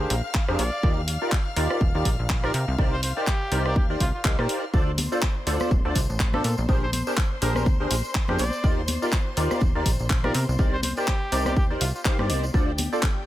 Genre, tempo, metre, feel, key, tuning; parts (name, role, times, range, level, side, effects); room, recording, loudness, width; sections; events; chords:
piano house; 123 BPM; 4/4; swing 57% on 16ths; C dorian; A4 = 442 Hz
rich chamber violin section; sustained chords; 0.0-13.3 s; G4 to F6; -36 LUFS; left 2 dB; sidechain pumping
percussive organ stab; riff; 0.0-13.1 s; D4 to F5; -28 LUFS; equal; ensemble chorus, sidechain pumping
plucky analog bass; bass; 0.0-12.9 s; D1 to C3; -27 LUFS; equal; sidechain pumping
house drum kit; drums; 0.1-13.1 s; handclaps, hi-hat, rim click; -29 LUFS; equal
electronic kick drum; drums; 0.3-13.1 s; -23 LUFS; equal
clear trumpet; melody; 0.6-12.0 s; F4 to D5; -33 LUFS; equal; digital delay
tambourine and congas; percussion; 4.7-13.1 s; -34 LUFS; left 3 dB
digital ambience; -21 LUFS; side -14 dB against mid
0.0-13.3 A section
0.0 Bb13; 0.8 Ebmaj9; 2.5 Cm9; 4.7 Dm7; 6.4 Bb13; 8.6 Ebmaj9; 10.3 Cm9; 12.5 Dm7